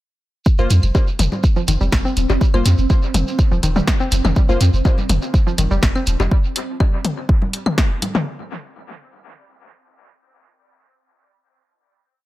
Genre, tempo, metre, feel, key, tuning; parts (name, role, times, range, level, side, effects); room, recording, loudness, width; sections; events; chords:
minimal techno; 123 BPM; 4/4; straight; A4 = 440 Hz
electronic kick drum; drums; 0.5-7.9 s; -16 LUFS; equal; overdrive
shekere; percussion; 0.5-6.3 s; -31 LUFS; right 4 dB; dub echo
swarming drone; texture; 1.4-6.3 s; C4; -30 LUFS; right 2 dB; built-in reverb, sidechain pumping
wavetable chord stab; stabs; 0.6-4.6 s; Bb3 to C5; -27 LUFS; left 2 dB; dub echo
punchy sub bass; bass; 0.6-6.3 s; Eb1 to F2; -16 LUFS; equal; tube saturation, sidechain pumping
punchy analog drum machine; drums; 0.7-8.1 s; hi-hat, snare drum; -25 LUFS; equal; dub echo
electronic congas, claves, bongos and toms; percussion; 0.7-8.2 s; -24 LUFS; left 2 dB; dub echo
hollow square pluck; riff; 1.6-6.0 s; Eb3 to C4; -26 LUFS; equal; chorus, sidechain pumping, dub echo
little or no reverb; echo-heavy mix; -15 LUFS; side -16 dB against mid
0.5-8.3 drop
drop 0.5-8.3
0.5 F5